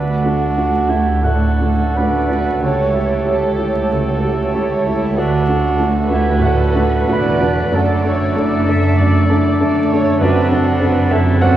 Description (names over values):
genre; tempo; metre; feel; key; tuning
classical; 95 BPM; 4/4; uneven beats, rubato; D major; A4 = 438 Hz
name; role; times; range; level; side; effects
warm grand piano; melody; 0.0-11.6 s; C#2 to B5; -18 LUFS; equal; none
warm symphonic violin section; melody; 0.0-11.6 s; C4 to A4; -30 LUFS; right 3 dB; none
bright clarinet; second line; 0.0-11.6 s; A4; -28 LUFS; left 2 dB; none
dark studio violin section; second line; 0.0-11.6 s; F#4 to D5; -26 LUFS; right 1 dB; none
mellow concert flute; second line; 0.0-11.6 s; D5 to G5; -25 LUFS; right 3 dB; none
warm cor anglais; second line; 0.0-11.6 s; D4 to B4; -26 LUFS; right 3 dB; none
dark bassoon; accompaniment; 0.0-11.6 s; A3 to C4; -26 LUFS; right 6 dB; none
warm chamber viola section; accompaniment; 0.0-11.6 s; E4 to E5; -26 LUFS; right 2 dB; none
mellow French horn section; sustained chords; 0.0-11.6 s; A3 to G4; -24 LUFS; right 1 dB; none
dark chamber double bass section; bass; 0.0-11.6 s; E1 to D2; -22 LUFS; right 2 dB; none
warm chamber cello section; bass; 0.0-11.6 s; C#2 to F#2; -22 LUFS; right 2 dB; none
room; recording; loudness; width
wet cathedral reverb, RT60 5.6 s; in a vast, echoing space, vinyl crackle; -13 LUFS; side -12 dB against mid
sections
0.0-11.6 A section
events
none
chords
0.0 D; 2.6 A7/C#; 5.2 D; 7.7 D/F#; 10.2 D7/F#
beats
0.58 1.24 1.98 | 2.63 3.27 3.91 4.54 | 5.17 5.79 6.42 7.11 | 7.74 8.39 9.01 9.62 | 10.22 10.82 11.42